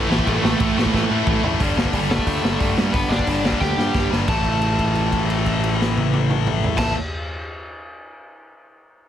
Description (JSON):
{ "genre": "punk rock", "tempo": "178 BPM", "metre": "4/4", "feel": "straight", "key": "unclear", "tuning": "A4 = 440 Hz", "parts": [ { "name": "crunchy overdriven guitar", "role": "melody", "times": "0.0-6.9 s", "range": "E3 to A5", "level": "-24 LUFS", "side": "right 1 dB", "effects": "none" }, { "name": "cranked stack guitar", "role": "riff", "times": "0.0-7.0 s", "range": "G2 to A3", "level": "-25 LUFS", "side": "right 10 dB", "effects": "overdrive" }, { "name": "tight distorted guitar", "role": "riff", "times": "0.0-6.9 s", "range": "G2 to A3", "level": "-24 LUFS", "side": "left 12 dB", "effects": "distortion" }, { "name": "tight distorted guitar", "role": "riff", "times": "0.0-1.4 s", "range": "A2 to A3", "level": "-27 LUFS", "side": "right 2 dB", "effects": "distortion" }, { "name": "growling picked electric bass", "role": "bass", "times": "0.0-6.9 s", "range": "G1 to A2", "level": "-25 LUFS", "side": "equal", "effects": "overdrive" }, { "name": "raw garage drum kit", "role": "drums", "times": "0.1-6.9 s", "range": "crash cymbal, hi-hat, kick drum, snare drum, toms", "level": "-23 LUFS", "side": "equal", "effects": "none" } ], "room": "little or no reverb", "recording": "heavily compressed radio sound", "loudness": "-17 LUFS", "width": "side -10 dB against mid", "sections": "0.0-1.6 A section; 1.6-4.3 B section; 4.3-7.0 C section", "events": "drum fill 0.9-1.6, 3.6-4.3; held note 4.3-6.8", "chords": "0.0 A5; 1.6 G5; 4.3 A5" }